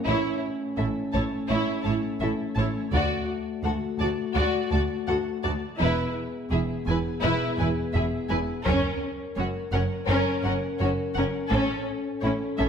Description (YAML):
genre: cinematic, epic orchestral film score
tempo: 84 BPM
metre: 4/4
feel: straight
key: unclear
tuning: A4 = 439 Hz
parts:
  - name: mellow French horn section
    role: sustained chords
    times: 0.0-12.7 s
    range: A3 to A#4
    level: -31 LUFS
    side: left 4 dB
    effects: none
  - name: warm symphonic violin section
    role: melody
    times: 0.1-12.7 s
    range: A4 to A5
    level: -34 LUFS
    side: left 2 dB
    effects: none
  - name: warm symphonic violin section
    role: second line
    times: 0.1-12.7 s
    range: C#4 to D5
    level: -32 LUFS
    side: left 2 dB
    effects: none
  - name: warm symphonic viola section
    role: accompaniment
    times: 0.1-12.7 s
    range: C#4 to F#4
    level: -31 LUFS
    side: right 2 dB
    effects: none
  - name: rich symphonic cello section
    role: bass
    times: 0.1-12.7 s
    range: D2 to A2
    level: -30 LUFS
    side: right 2 dB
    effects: none
  - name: rich symphonic double bass section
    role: bass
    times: 0.1-12.7 s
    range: E1 to D2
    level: -31 LUFS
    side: right 2 dB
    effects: none
  - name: taiko ensemble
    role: drums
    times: 2.9-4.3, 8.7-10.1 s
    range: none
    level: -31 LUFS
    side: equal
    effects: none
room: moderate scoring stage reverb, RT60 1.6 s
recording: none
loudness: -24 LUFS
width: side -7 dB against mid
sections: 0.0-12.7 A section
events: build-up 0.0-12.7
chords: 0.1 A; 2.9 D; 5.8 E; 8.7 F#; 11.5 A